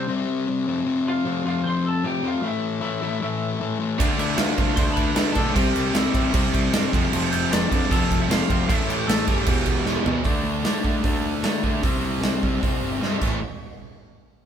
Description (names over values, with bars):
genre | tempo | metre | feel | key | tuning
punk rock | 153 BPM | 4/4 | straight | unclear | A4 = 440 Hz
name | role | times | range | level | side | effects
lightly driven lead guitar | melody | 0.0-10.1 s | C4 to C6 | -29 LUFS | equal | none
sludgy distorted guitar | riff | 0.0-13.4 s | E2 to D4 | -24 LUFS | left 4 dB | overdrive
heavy high-gain guitar | riff | 4.0-10.2 s | E2 to D4 | -32 LUFS | right 2 dB | distortion
tight distorted guitar | riff | 4.0-13.4 s | E2 to D4 | -30 LUFS | right 9 dB | distortion
fuzz picked electric bass | bass | 4.0-13.4 s | E1 to D3 | -30 LUFS | right 1 dB | overdrive
big rock drum kit | drums | 4.0-13.3 s | crash cymbal, hi-hat, kick drum, snare drum, toms | -23 LUFS | right 1 dB | none
room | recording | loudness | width
moderate stone room reverb, RT60 1.0 s | band playing live in one room | -20 LUFS | side -8 dB against mid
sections
0.0-10.3 A section; 10.3-13.4 B section; 13.4-14.5 C section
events
drum fill 9.9-10.3, 13.0-13.4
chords
0.0 C5; 0.7 F; 2.4 A5; 4.0 Dm; 5.6 C; 6.9 F; 8.7 A5; 9.5 Em; 10.3 D5; 11.8 C5; 13.2 A5; 13.4 N.C.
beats
0.09 0.48 | 0.87 1.26 1.65 2.04 | 2.44 2.83 3.22 3.61 | 4.00 4.39 4.78 5.17 | 5.56 5.95 6.34 6.73 | 7.12 7.51 7.91 8.30 | 8.69 9.08 9.47 9.86 | 10.25 10.65 11.04 11.44 | 11.83 12.22 12.62 13.01